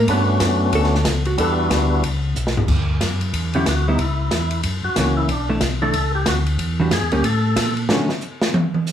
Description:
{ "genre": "soul jazz organ trio", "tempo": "184 BPM", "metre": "4/4", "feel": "swing 62% on 8ths", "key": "D major", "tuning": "A4 = 440 Hz", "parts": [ { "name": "hollow-body jazz guitar", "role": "accompaniment", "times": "0.0-1.5, 3.5-8.1 s", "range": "D3 to B4", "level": "-21 LUFS", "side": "right 1 dB", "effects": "none" }, { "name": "mellow tonewheel organ", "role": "bass", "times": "0.0-8.1 s", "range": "B1 to D3", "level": "-21 LUFS", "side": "left 1 dB", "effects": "slow rotary speaker" }, { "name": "percussive tonewheel organ", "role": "melody", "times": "0.1-7.7 s", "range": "G3 to A4", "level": "-22 LUFS", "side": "left 1 dB", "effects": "slow rotary speaker, plate reverb" }, { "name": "open jazz drum kit", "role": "drums", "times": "0.1-8.9 s", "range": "crash cymbal, hi-hat, kick drum, ride cymbal, snare drum, toms", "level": "-22 LUFS", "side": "equal", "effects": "none" } ], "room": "moderate small room reverb, RT60 0.5 s", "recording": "studio ambience", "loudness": "-17 LUFS", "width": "side -9 dB against mid", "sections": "0.0-2.7 A section; 2.7-8.9 A section", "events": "hollow-body jazz guitar solo 0.0-2.7; drum fill 2.4-2.7; tonewheel organ solo 2.7-8.9; drum solo 7.9-8.9", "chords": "0.1 Gmaj9#11; 1.4 Em9; 2.0 Bsus2; 2.7 Dadd9; 4.0 C#m; 4.6 F#7; 5.3 Bm11; 6.6 Em9; 7.2 N.C.; 7.9 Dmaj7", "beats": "| 0.08 0.41 0.73 1.06 | 1.39 1.71 2.04 2.36 | 2.69 3.01 3.34 3.66 | 3.99 4.32 4.64 4.97 | 5.29 5.62 5.94 6.27 | 6.59 6.92 7.25 7.57 | 7.90 8.22 8.55 8.87" }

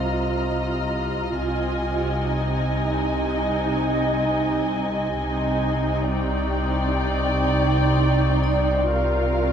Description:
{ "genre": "cinematic", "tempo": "64 BPM", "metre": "4/4", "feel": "straight", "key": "C minor", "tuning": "A4 = 440 Hz", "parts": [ { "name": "muted studio violin section", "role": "melody", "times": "0.0-9.5 s", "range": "F5 to Bb5", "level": "-31 LUFS", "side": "left 2 dB", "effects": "none" }, { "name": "muted studio violin section", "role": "second line", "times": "0.0-9.5 s", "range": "Bb4 to Eb5", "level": "-28 LUFS", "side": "equal", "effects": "none" }, { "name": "muted studio viola section", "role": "accompaniment", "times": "0.0-9.5 s", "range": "Eb4 to F4", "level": "-27 LUFS", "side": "right 3 dB", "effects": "none" }, { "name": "muted studio cello section", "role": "bass", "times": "0.0-9.5 s", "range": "C3", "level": "-28 LUFS", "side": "equal", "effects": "none" }, { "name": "muted studio double bass section", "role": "bass", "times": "0.0-9.5 s", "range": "C2", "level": "-28 LUFS", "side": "right 1 dB", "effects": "none" }, { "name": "analog drone", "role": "drone", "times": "0.0-9.5 s", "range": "C2", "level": "-29 LUFS", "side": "left 1 dB", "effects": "chorus" }, { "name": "muted studio violin section", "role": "texture", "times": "0.0-9.5 s", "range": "C6 to G6", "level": "-38 LUFS", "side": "left 4 dB", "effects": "none" }, { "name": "vibraphone with medium hard mallets", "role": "texture", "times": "0.0-9.5 s", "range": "C4 to F5", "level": "-31 LUFS", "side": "left 1 dB", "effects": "none" } ], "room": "wet recital hall reverb, RT60 1.6 s", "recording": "minimal, uncompressed stereo recording", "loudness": "-20 LUFS", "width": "side -8 dB against mid", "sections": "0.0-9.5 A section", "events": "none", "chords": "0.0 Ebsus2/C; 1.4 Ab/C; 5.2 Cmadd9; 8.9 Bbsus2/C", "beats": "0.48 | 1.42 2.36 3.30 4.24 | 5.17 6.10 7.03 7.97 | 8.92" }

